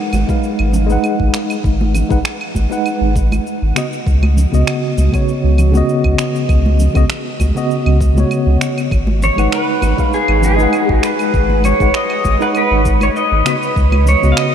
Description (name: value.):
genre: sunset chillout.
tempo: 99 BPM.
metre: 4/4.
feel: swing 53% on 16ths.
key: G# dorian.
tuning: A4 = 440 Hz.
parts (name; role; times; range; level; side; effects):
tine electric piano; accompaniment; 0.0-14.5 s; C#3 to F#5; -18 LUFS; moving between left 4 dB and right 3 dB; overdrive, medium stereo tremolo, auto-pan, diffuse ambient delay.
warm sub bass; bass; 0.1-14.3 s; G#1 to C#2; -14 LUFS; equal; none.
electronic claves, shaker and finger snaps; drums; 0.1-14.5 s; none; -25 LUFS; right 2 dB; none.
congas and bongos; percussion; 0.1-14.2 s; none; -26 LUFS; right 2 dB; none.
electronic kick drum; drums; 0.3-13.9 s; none; -18 LUFS; equal; none.
pedal steel guitar; melody; 9.2-14.5 s; G#4 to E#5; -16 LUFS; equal; lush chorus, diffuse ambient delay.
room: moderate huge ambient reverb, RT60 7.1 s.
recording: dreamy mix soaked in reverb.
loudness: -12 LUFS.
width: side -9 dB against mid.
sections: 0.0-14.5 A section.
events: none.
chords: 0.0 G#m7; 3.8 C#9sus4; 8.9 G#m7; 13.5 C#9sus4.